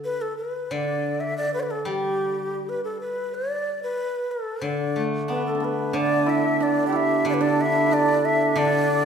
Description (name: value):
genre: chinese traditional, Chinese chamber ensemble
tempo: 92 BPM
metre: 2/4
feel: rubato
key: D zhi mode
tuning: A4 = 437 Hz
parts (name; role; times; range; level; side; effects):
- breathy xiao; melody; 0.0-9.1 s; G4 to G5; -24 LUFS; left 1 dB; none
- steel-string zither; accompaniment; 0.0-9.1 s; D3 to D4; -27 LUFS; left 2 dB; none
- hammered dulcimer; second line; 5.3-9.1 s; B3 to G4; -23 LUFS; right 5 dB; none
room: wet recital hall reverb, RT60 1.4 s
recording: minimal, uncompressed stereo recording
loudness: -21 LUFS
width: side -7 dB against mid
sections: 0.0-6.0 A section; 6.0-9.1 B section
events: none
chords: none